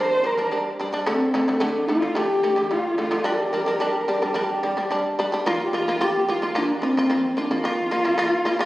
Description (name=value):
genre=mongolian traditional, Mongolian folk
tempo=109 BPM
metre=4/4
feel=straight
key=unclear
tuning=A4 = 442 Hz
part: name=dark horsehead fiddle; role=melody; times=0.0-8.7 s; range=C4 to C5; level=-22 LUFS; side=equal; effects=none
part: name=shamisen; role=arpeggios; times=0.0-8.7 s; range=D3 to F4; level=-24 LUFS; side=equal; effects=none
room=wet scoring stage reverb, RT60 2.0 s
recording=recorded on a phone in the room, studio reverb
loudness=-20 LUFS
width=side -17 dB against mid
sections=0.0-5.5 A section; 5.5-8.7 B section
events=none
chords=0.0 G5; 1.1 D5; 3.3 G5; 5.5 Bb5